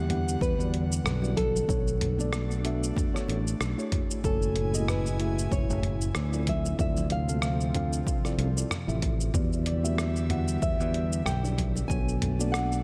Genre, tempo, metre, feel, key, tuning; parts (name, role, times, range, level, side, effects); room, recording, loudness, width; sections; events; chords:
sunset chillout; 94 BPM; 4/4; swing 56% on 16ths; A4 = 440 Hz
nylon-string guitar; melody; 0.0-12.8 s; G4 to G#5; -37 LUFS; equal; delay
mellow tine electric piano; accompaniment; 0.0-12.8 s; A3 to G#5; -37 LUFS; equal; digital delay
airy breathy pad; sustained chords; 0.0-12.8 s; A2 to G#5; -38 LUFS; equal; chorus
fingered electric bass; bass; 0.0-12.8 s; F#1 to E2; -31 LUFS; equal
dusty soul sampler-style drum kit; drums; 0.1-12.8 s; hi-hat, rim click, shaker, toms; -36 LUFS; equal
electronic kick drum; drums; 0.4-12.0 s; -33 LUFS; equal; overdrive
bongos and congas; percussion; 1.2-12.5 s; -41 LUFS; equal
light reverb; dark, warm production; -28 LUFS; mono
0.0-12.8 A section
0.0 Em9; 1.7 Bm9; 3.9 F#m9; 6.5 Dm9; 9.3 Em9; 11.9 Bm9